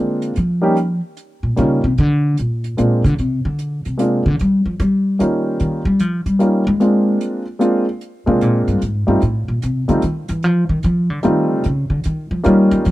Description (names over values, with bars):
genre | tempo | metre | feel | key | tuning
jazz piano trio | 149 BPM | 3/4 | swing 66% on 8ths | Bb mixolydian | A4 = 440 Hz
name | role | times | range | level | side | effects
warm baby grand piano | melody | 0.0-12.8 s | G3 to G4 | -16 LUFS | equal | none
upright bass | bass | 0.0-12.9 s | G2 to Ab3 | -16 LUFS | equal | none
hi-hat | drums | 0.2-12.9 s | none | -40 LUFS | right 6 dB | none
room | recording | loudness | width
small room ambience | dry, close 1970s-style studio recording | -15 LUFS | side -16 dB against mid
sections
0.0-12.9 A section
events
upright bass solo 0.0-12.9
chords
0.0 Bb9; 0.8 Eb9 (rootless); 2.0 Bb9; 4.4 Eb9; 6.8 Bb9; 9.2 F9; 11.6 Eb9